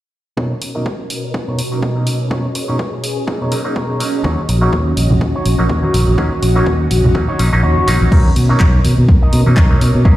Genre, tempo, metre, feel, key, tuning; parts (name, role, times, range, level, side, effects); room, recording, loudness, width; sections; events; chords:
filtered disco house; 124 BPM; 4/4; swing 56% on 16ths; B major; A4 = 440 Hz
bright clav; accompaniment; 0.4-10.2 s; F#3 to G#4; -24 LUFS; right 1 dB; phaser, sidechain pumping, low-pass filter
phased string machine; sustained chords; 0.4-10.2 s; B2 to D#5; -21 LUFS; equal; ensemble chorus, phaser, sidechain pumping, low-pass filter
electric guitar with an envelope filter; riff; 0.4-10.2 s; B2 to D#5; -23 LUFS; equal; vintage 12-bit sampler grit, sidechain pumping, low-pass filter
electronic kick drum; drums; 0.4-10.2 s; -14 LUFS; equal; overdrive, high-pass filter on kick, small room ambience
punchy analog drum machine; drums; 0.6-9.9 s; crash cymbal, handclaps, hi-hat; -26 LUFS; equal; overdrive, sidechain pumping on hats, small room ambience, sidechain pumping on cymbals
fingered electric bass; bass; 4.2-10.2 s; A#1 to B2; -14 LUFS; equal; sidechain pumping, low-pass filter
tambourine and congas; percussion; 4.2-10.2 s; -20 LUFS; right 1 dB; sidechain pumping on perc, low-pass filter on perc
light reverb, digital ambience; played on a big sound system in a bare room, stone room reverb; -12 LUFS; side -15 dB against mid
0.4-8.1 A section; 8.1-10.2 B section
filter sweep 0.4-8.1; kick drops out 7.6-8.1
0.4 Bmaj9; 4.2 D#m7; 8.1 Bmaj9